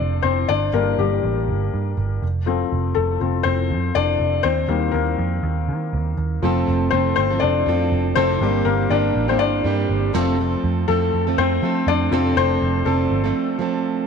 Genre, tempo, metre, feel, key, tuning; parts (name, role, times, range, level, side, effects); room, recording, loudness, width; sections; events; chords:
pop; 121 BPM; 4/4; swing 56% on 16ths; A4 = 445 Hz
felt-muted upright piano; accompaniment; 0.0-14.1 s; Eb3 to D5; -21 LUFS; left 9 dB
vintage muted picked electric bass; bass; 0.0-13.3 s; F1 to F3; -22 LUFS; right 2 dB
fingerpicked plugged-in steel-string acoustic guitar; riff; 6.4-14.1 s; F2 to A4; -23 LUFS; right 11 dB
moderate plate reverb, RT60 3.6 s; 1960s-style stereo with parts hard left and right; -18 LUFS; side -6 dB against mid
0.0-14.1 A section
felt piano solo 0.0-14.1; break 13.4-14.1
0.5 Gm; 2.2 F; 4.4 Eb; 6.4 F; 8.4 Gm; 10.1 F